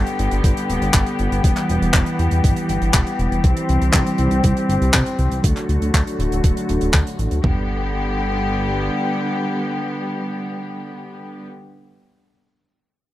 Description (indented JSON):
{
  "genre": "italo disco",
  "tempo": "120 BPM",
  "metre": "4/4",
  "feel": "straight",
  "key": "G major",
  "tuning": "A4 = 440 Hz",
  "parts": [
    { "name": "clear chamber string section", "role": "sustained chords", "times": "0.0-11.5 s", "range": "D3 to G4", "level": "-21 LUFS", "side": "left 1 dB", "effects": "low-pass filter" },
    { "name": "chorused synth bass", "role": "bass", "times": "0.0-8.9 s", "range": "D1 to E2", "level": "-21 LUFS", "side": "equal", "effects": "none" },
    { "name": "tight funk drum kit", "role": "drums", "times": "0.1-7.4 s", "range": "handclaps, hi-hat", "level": "-23 LUFS", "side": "equal", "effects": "none" },
    { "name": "clean 12-bit digital drum machine", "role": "drums", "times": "0.4-7.6 s", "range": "kick drum, toms", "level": "-17 LUFS", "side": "equal", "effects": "none" }
  ],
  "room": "small room ambience",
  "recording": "dry, close 1970s-style studio recording",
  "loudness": "-17 LUFS",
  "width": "side -14 dB against mid",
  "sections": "0.0-7.4 A section; 7.4-11.4 B section",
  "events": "filter sweep on string section 0.0-7.4",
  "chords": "0.0 G; 1.4 Em; 3.4 C; 5.4 D; 7.4 G"
}